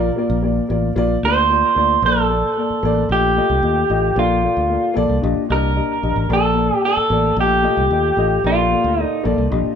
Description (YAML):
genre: uptempo 1960s-style soul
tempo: 112 BPM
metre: 4/4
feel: straight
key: Bb major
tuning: A4 = 440 Hz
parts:
  - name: dark upright piano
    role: accompaniment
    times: 0.0-9.8 s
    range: Bb2 to Eb5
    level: -21 LUFS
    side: left 3 dB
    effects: none
  - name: fingered electric bass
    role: bass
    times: 0.0-9.7 s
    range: A1 to Eb2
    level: -21 LUFS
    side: equal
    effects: none
  - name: electric guitar through a small old amp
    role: melody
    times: 1.3-9.2 s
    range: F4 to C5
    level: -17 LUFS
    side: right 2 dB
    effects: tape echo
room: light reverb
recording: band playing live in one room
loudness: -15 LUFS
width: side -7 dB against mid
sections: 0.0-2.0 A section; 2.0-9.8 B section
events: none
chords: 0.0 Bb; 2.0 Bbmaj7; 3.1 F7/Bb; 4.2 Bbmaj7; 5.2 Ebmaj7/Bb; 6.3 Bbmaj7; 7.4 F7/Bb; 8.4 Bbmaj7